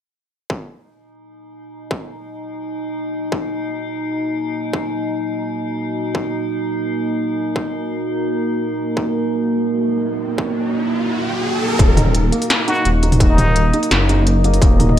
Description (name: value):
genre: half-time drum and bass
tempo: 170 BPM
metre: 4/4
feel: half-time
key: Eb minor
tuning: A4 = 440 Hz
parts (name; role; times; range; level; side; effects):
- deep dark ambient pad; sustained chords; 2.2-15.0 s; Bb3 to Eb5; -23 LUFS; right 1 dB; chorus, built-in reverb, sidechain pumping
- electronic kick drum; drums; 0.5-14.7 s; none; -17 LUFS; equal; distortion, high-pass filter on kick, studio reverb
- metallic inharmonic drone; texture; 1.5-11.8 s; Eb4; -25 LUFS; right 1 dB; chorus, built-in reverb
- riser; sound effects; 9.8-11.8 s; none; -24 LUFS; left 1 dB; none
- dark detuned saw bass; bass; 11.8-15.0 s; Eb1 to Gb1; -15 LUFS; equal; tube saturation
- industrial drum kit; drums; 11.8-15.0 s; hi-hat, snare drum, toms; -19 LUFS; equal; low-pass filter on hats, studio reverb, low-pass filter on toms, low-pass filter on snare, gated reverb
- felt-muted upright piano; arpeggios; 12.0-15.0 s; Bb3 to Eb4; -22 LUFS; right 3 dB; digital delay
- trumpet with plunger mute; melody; 12.7-13.8 s; Eb4 to Gb4; -22 LUFS; left 1 dB; digital delay
room: moderate lush hall reverb, RT60 1.9 s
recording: bright 1980s-style digital production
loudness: -16 LUFS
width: side -10 dB against mid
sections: 0.5-11.8 A section; 11.8-15.0 B section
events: riser 9.8-11.8; kick drops out 11.1-11.8; drop 11.8-15.0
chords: 0.5 Ebm